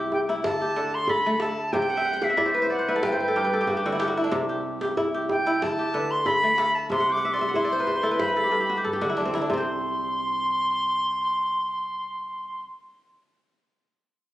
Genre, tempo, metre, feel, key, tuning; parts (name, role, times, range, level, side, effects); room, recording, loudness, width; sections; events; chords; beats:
west african traditional, West African string and xylophone music; 93 BPM; 4/4; straight; C lydian; A4 = 438 Hz
kora; arpeggios; 0.0-12.8 s; G2 to G5; -26 LUFS; left 1 dB
upright bass; bass; 0.0-12.6 s; G1 to G2; -44 LUFS; right 1 dB
silver concert flute; melody; 0.1-12.6 s; E5 to D6; -25 LUFS; equal
djembe; percussion; 0.1-9.8 s; -30 LUFS; right 1 dB
moderate recital hall reverb, RT60 1.6 s; recorded on a phone in the room, studio ambience; -22 LUFS; side -15 dB against mid
0.0-9.5 A section; 9.5-12.1 B section
kora fill 1.8-4.3, 6.9-9.5; drum fill 8.8-9.5
0.4 D5; 1.7 C; 3.0 G5; 4.3 C; 5.6 D5; 6.9 C; 8.2 G; 9.5 N.C.
0.45 1.09 | 1.74 2.38 3.03 3.67 | 4.32 4.96 5.61 6.26 | 6.91 7.55 8.20 8.85 | 9.50 10.15 10.80 11.45